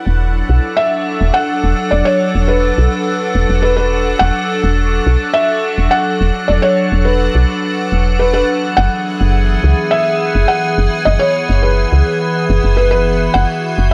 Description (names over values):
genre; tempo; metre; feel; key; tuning
IDM; 105 BPM; 4/4; straight; unclear; A4 = 440 Hz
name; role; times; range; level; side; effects
felt-muted upright piano; melody; 0.0-13.9 s; B4 to F#5; -19 LUFS; equal; tape echo
icy glass pad; sustained chords; 0.0-13.9 s; E3 to A4; -20 LUFS; equal; chorus, built-in reverb
bubbling stepped-filter texture; texture; 0.0-13.9 s; F#5; -29 LUFS; equal; chorus, built-in reverb
woody FM bass; bass; 0.1-13.9 s; E1 to C#2; -16 LUFS; equal; none
room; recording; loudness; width
light reverb, digital ambience; none; -14 LUFS; mono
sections
0.0-13.9 A section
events
none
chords
0.0 E9sus4; 8.5 F#9sus4